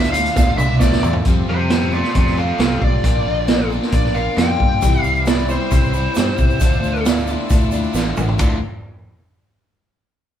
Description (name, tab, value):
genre	folk rock and heartland rock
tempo	134 BPM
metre	4/4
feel	straight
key	D minor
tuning	A4 = 440 Hz
part	biting lead guitar	melody	0.0-7.0 s	F4 to G5	-21 LUFS	left 1 dB	overdrive
part	picked steel-string acoustic guitar	accompaniment	0.0-8.6 s	Bb2 to C5	-27 LUFS	left 4 dB	none
part	warm grand piano	accompaniment	0.0-1.1, 4.8-8.6 s	F4 to A5	-34 LUFS	right 3 dB	none
part	bright symphonic string section	sustained chords	0.0-8.6 s	D4 to E6	-36 LUFS	left 4 dB	none
part	overdriven electric guitar	riff	0.0-8.6 s	F2 to F4	-25 LUFS	equal	none
part	fingered electric bass	bass	0.0-8.6 s	A1 to G2	-22 LUFS	equal	none
part	vintage drum kit	drums	0.0-8.5 s	hi-hat, kick drum, ride cymbal, snare drum, toms	-17 LUFS	right 1 dB	none
part	tube shaker	percussion	0.1-1.1, 4.8-8.6 s	none	-38 LUFS	right 4 dB	none
room	light reverb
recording	band playing live in one room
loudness	-14 LUFS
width	side -10 dB against mid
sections	0.0-1.3 A section; 1.3-8.4 B section; 8.4-10.2 C section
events	drum fill 0.4-1.3, 7.9-8.4; lead electric guitar solo 1.3-8.4; grand piano fill 7.7-8.4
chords	0.0 Dmadd9; 1.3 Fadd9; 3.0 Bb; 4.8 C; 6.6 Dmadd9